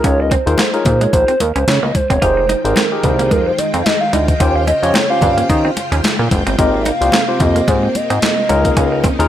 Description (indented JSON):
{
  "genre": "early-eighties boogie funk",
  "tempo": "110 BPM",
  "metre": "4/4",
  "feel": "swing 56% on 16ths",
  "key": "unclear",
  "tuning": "A4 = 440 Hz",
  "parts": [
    { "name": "hollow clarinet-like synth lead", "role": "melody", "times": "0.0-9.3 s", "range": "Bb4 to G5", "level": "-18 LUFS", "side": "right 1 dB", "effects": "chorus" },
    { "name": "barky tine electric piano", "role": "accompaniment", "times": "0.0-9.3 s", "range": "C4 to Db5", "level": "-20 LUFS", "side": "left 3 dB", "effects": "none" },
    { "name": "semi-hollow electric guitar", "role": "riff", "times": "0.0-9.1 s", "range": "Ab3 to F4", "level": "-24 LUFS", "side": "right 4 dB", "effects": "lush chorus" },
    { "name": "chorused synth bass", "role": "bass", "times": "0.0-9.3 s", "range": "E1 to Eb3", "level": "-17 LUFS", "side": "equal", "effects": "none" },
    { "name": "clean 12-bit digital drum machine", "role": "drums", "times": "0.0-9.3 s", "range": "handclaps, hi-hat, kick drum, snare drum", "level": "-17 LUFS", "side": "equal", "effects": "gated reverb" },
    { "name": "congas", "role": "percussion", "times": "0.0-9.2 s", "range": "none", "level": "-25 LUFS", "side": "left 3 dB", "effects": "none" },
    { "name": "string machine, violins", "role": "sustained chords", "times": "2.2-9.3 s", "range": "C3 to G5", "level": "-24 LUFS", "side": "equal", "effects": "ensemble chorus" }
  ],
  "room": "little or no reverb",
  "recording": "none",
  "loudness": "-12 LUFS",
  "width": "side -11 dB against mid",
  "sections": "0.0-9.3 A section",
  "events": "soft synth lead solo 0.0-9.3",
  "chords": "0.0 Db69; 2.2 Fm9; 4.4 Eb13; 6.6 Abmaj13; 8.5 Db69",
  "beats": "| 0.04 0.59 1.13 1.68 | 2.22 2.77 3.31 3.86 | 4.41 4.95 5.50 6.04 | 6.59 7.13 7.68 8.22 | 8.77"
}